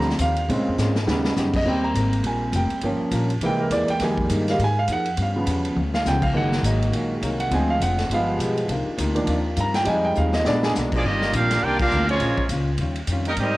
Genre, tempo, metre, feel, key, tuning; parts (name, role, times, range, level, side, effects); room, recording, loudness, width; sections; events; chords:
jazz, big band swing; 205 BPM; 4/4; swing 60% on 8ths; Eb major; A4 = 440 Hz
archtop guitar, miked and amplified; accompaniment; 0.0-13.6 s; G2 to Bb4; -32 LUFS; left 2 dB; cassette tape
clear concert grand piano; accompaniment; 0.0-10.9 s; Db3 to Bb5; -23 LUFS; right 1 dB; cassette tape
clear trombone section; sustained chords; 0.0-1.6, 6.3-11.0 s; Db3 to Bb4; -32 LUFS; left 1 dB; cassette tape
upright bass; bass; 0.0-13.6 s; F1 to Bb2; -25 LUFS; equal
swinging big-band drum kit; drums; 0.0-13.5 s; crash cymbal, hi-hat, kick drum, ride cymbal, snare drum, toms; -29 LUFS; equal; cassette tape
clear trombone section; second line; 10.9-13.6 s; F3 to G4; -26 LUFS; right 1 dB; cassette tape
brilliant trumpet section; melody; 11.0-13.6 s; Bb3 to G5; -23 LUFS; right 1 dB; cassette tape
moderate spring reverb, RT60 1.9 s; home recording on cassette; -20 LUFS; side -18 dB against mid
0.0-1.7 A section; 1.7-11.0 A section; 11.0-13.6 B section
grand piano solo 0.0-11.0; drum fill 0.8-1.4, 5.8, 10.2-10.7; band accent 11.8
0.5 Bbm7; 1.1 Eb7alt; 1.7 Abmaj9; 2.8 Gm7b5; 3.4 C7b13; 4.0 Fm11; 5.2 G7#11; 6.3 Gb69; 7.5 Dm7b5; 8.1 G7b9; 8.7 Cm11; 9.9 Fm7; 10.4 Bb7b9; 11.0 Ebmaj13; 12.2 Bbm7; 12.8 Eb9